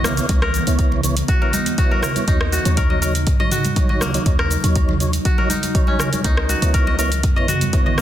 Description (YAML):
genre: afro house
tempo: 121 BPM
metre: 4/4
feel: straight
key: Eb phrygian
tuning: A4 = 440 Hz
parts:
  - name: ethereal airy pad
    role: sustained chords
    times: 0.0-8.0 s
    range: Db3 to Eb4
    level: -27 LUFS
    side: right 1 dB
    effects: ensemble chorus, built-in reverb, vintage 12-bit sampler grit, sidechain pumping
  - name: kora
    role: arpeggios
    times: 0.0-8.0 s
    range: Bb3 to Eb5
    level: -24 LUFS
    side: left 2 dB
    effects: sidechain pumping, digital delay
  - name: mellow tonewheel organ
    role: stabs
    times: 0.0-8.0 s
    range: Gb3 to Db5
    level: -26 LUFS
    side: right 2 dB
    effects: chorus vibrato, slow rotary speaker, sidechain pumping, digital delay
  - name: warm 808-style bass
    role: bass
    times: 0.0-8.0 s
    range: Cb2 to Ab2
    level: -22 LUFS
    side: equal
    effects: sidechain pumping
  - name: afro-pop drum kit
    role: drums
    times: 0.0-8.0 s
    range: hi-hat, rim click, shaker, toms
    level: -23 LUFS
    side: right 2 dB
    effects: soft clipping on snare
  - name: congas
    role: percussion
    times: 0.0-8.0 s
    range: none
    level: -30 LUFS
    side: equal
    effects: none
  - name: electronic kick drum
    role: drums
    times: 0.3-7.8 s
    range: none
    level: -18 LUFS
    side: equal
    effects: none
room: little or no reverb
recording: dense, heavily limited modern master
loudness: -16 LUFS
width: side -12 dB against mid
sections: 0.0-8.0 A section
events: none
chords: 0.0 Dbm7; 2.3 Ebm7; 6.2 Dbm7